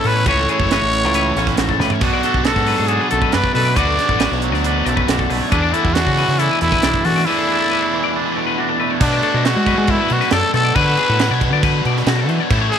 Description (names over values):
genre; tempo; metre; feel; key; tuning
math rock and midwest emo; 137 BPM; 4/4; straight; unclear; A4 = 440 Hz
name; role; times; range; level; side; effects
growling trumpet; melody; 0.0-12.8 s; D4 to D5; -20 LUFS; left 1 dB; tape echo
twangy electric guitar; accompaniment; 0.0-10.8 s; E2 to F#4; -24 LUFS; right 12 dB; none
clean electric guitar; arpeggios; 0.0-12.8 s; F#4 to D5; -22 LUFS; left 17 dB; none
biting overdriven guitar; riff; 0.0-12.8 s; A2 to G#4; -22 LUFS; equal; none
growling fingered electric bass; bass; 0.0-12.7 s; F#1 to G#3; -20 LUFS; equal; overdrive
crisp fusion drum kit; drums; 0.0-12.8 s; crash cymbal, hi-hat, kick drum, snare drum, toms; -21 LUFS; right 3 dB; none
room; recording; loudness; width
studio ambience; 1960s-style stereo with parts hard left and right; -14 LUFS; side -8 dB against mid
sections
0.0-9.0 A section; 9.0-12.8 B section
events
drum fill 1.8; break 7.3-9.0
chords
0.0 A69; 2.0 Bm7; 5.5 E9sus4; 9.0 Bm7